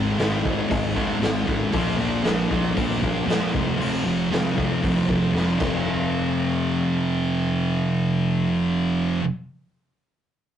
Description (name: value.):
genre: garage rock duo or trio.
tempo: 116 BPM.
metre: 4/4.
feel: straight.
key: unclear.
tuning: A4 = 440 Hz.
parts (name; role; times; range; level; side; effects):
thick fuzz guitar; riff; 0.0-9.2 s; F2 to Bb3; -22 LUFS; equal; distortion.
fuzz picked electric bass; bass; 0.0-9.2 s; F1 to F2; -29 LUFS; equal; overdrive, tube saturation.
raw garage drum kit; drums; 0.2-5.7 s; crash cymbal, hi-hat, kick drum, snare drum; -26 LUFS; equal; none.
room: moderate small room reverb, RT60 0.5 s.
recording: rough rehearsal-room recording, tube saturation, nothing above 11.0 kHz.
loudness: -20 LUFS.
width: side -9 dB against mid.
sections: 0.0-5.9 A section; 5.9-10.0 B section.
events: drum fill 5.3-5.9.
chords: 0.0 Ab5; 1.7 Bb5; 3.5 F5.